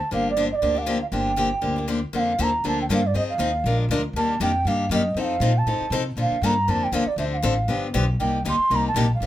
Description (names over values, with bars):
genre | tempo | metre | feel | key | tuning
acoustic string swing (jazz manouche) | 238 BPM | 4/4 | swing 56% on 8ths | unclear | A4 = 440 Hz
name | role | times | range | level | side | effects
mellow bansuri | melody | 0.0-9.3 s | D5 to C6 | -24 LUFS | right 3 dB | plate reverb
picked steel-string acoustic guitar | accompaniment | 0.1-9.3 s | C3 to Bb4 | -25 LUFS | left 3 dB | none
upright bass | bass | 0.1-9.3 s | G1 to C3 | -25 LUFS | equal | none
room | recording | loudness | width
light reverb | none | -20 LUFS | side -13 dB against mid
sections
0.0-2.1 A section; 2.1-9.3 B section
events
none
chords
0.1 Gm7; 2.1 Bbmaj7; 3.1 Fm7; 3.7 Bb7; 4.2 Ebmaj7; 5.2 F7; 6.2 Bbmaj7; 7.2 Dm7; 7.7 G7; 8.2 Cm7